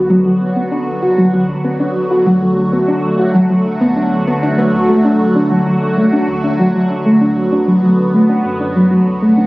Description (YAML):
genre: IDM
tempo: 97 BPM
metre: 4/4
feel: straight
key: unclear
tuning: A4 = 440 Hz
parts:
  - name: phased analog pad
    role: sustained chords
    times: 0.0-9.5 s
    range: D3 to F#4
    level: -16 LUFS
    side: equal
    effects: phaser, chorus
  - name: soft round pluck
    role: arpeggios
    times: 0.0-9.5 s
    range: F#3 to F#4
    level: -13 LUFS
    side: equal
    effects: lush chorus, tape echo
  - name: warm sub bass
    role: bass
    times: 0.0-9.5 s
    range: F#1 to F#2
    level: -26 LUFS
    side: equal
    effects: none
room: wet lush hall reverb, RT60 2.1 s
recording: recorded on a phone in the room, studio reverb, compression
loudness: -11 LUFS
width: side -21 dB against mid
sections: 0.0-9.5 A section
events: none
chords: 0.0 Bm; 4.7 D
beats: 0.41 1.02 1.64 | 2.26 2.88 3.50 4.12 | 4.74 5.36 5.97 6.59 | 7.21 7.83 8.45 9.07